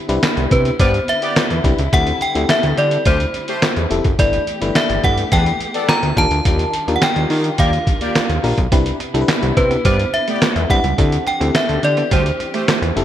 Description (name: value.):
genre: early-eighties boogie funk.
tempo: 106 BPM.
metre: 4/4.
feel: straight.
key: unclear.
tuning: A4 = 440 Hz.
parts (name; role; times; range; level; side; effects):
dark studio string section; sustained chords; 0.0-13.0 s; C3 to G4; -28 LUFS; equal; none.
FM electric piano; accompaniment; 0.1-13.0 s; C4 to B4; -23 LUFS; left 4 dB; chorus.
fat analog bass; bass; 0.1-13.0 s; F1 to Eb3; -19 LUFS; equal; none.
trip hop sampler-style drum kit; drums; 0.1-13.0 s; handclaps, hi-hat, kick drum, snare drum; -18 LUFS; equal; gated reverb.
metallic FM bell; melody; 0.5-12.9 s; B4 to Bb5; -20 LUFS; equal; chorus.
analog synth brass; second line; 0.8-12.8 s; E3 to D5; -25 LUFS; left 1 dB; chorus.
semi-hollow electric guitar; riff; 8.7-12.9 s; G3 to D4; -27 LUFS; right 9 dB; analog chorus.
room: light reverb.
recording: bright 1980s-style digital production.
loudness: -14 LUFS.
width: side -11 dB against mid.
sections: 0.0-13.0 A section.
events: none.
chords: 0.0 Cmaj9; 1.9 D9sus4; 4.2 G69; 6.2 Ebmaj9; 8.7 Cmaj9; 11.0 D9sus4.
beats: 0.23 0.79 1.36 | 1.93 2.49 3.06 3.62 | 4.19 4.76 5.32 5.89 | 6.46 7.02 7.59 8.15 | 8.72 9.29 9.85 10.42 | 10.98 11.55 12.12 12.68.